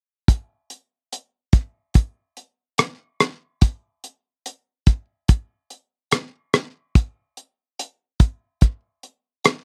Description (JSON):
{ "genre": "indie pop", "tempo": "72 BPM", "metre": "4/4", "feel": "swing 55% on 16ths", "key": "none", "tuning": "none", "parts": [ { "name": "damped 70s drum kit", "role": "drums", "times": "0.3-9.6 s", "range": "hi-hat, kick drum, rim click", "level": "-17 LUFS", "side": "equal", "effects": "none" } ], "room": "light reverb", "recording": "dry, close 1970s-style studio recording", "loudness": "-22 LUFS", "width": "mono", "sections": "0.3-9.6 A section", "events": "none", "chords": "none", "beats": "| 0.28 1.11 1.95 2.78 | 3.62 4.45 5.28 6.12 | 6.95 7.79 8.62 9.45" }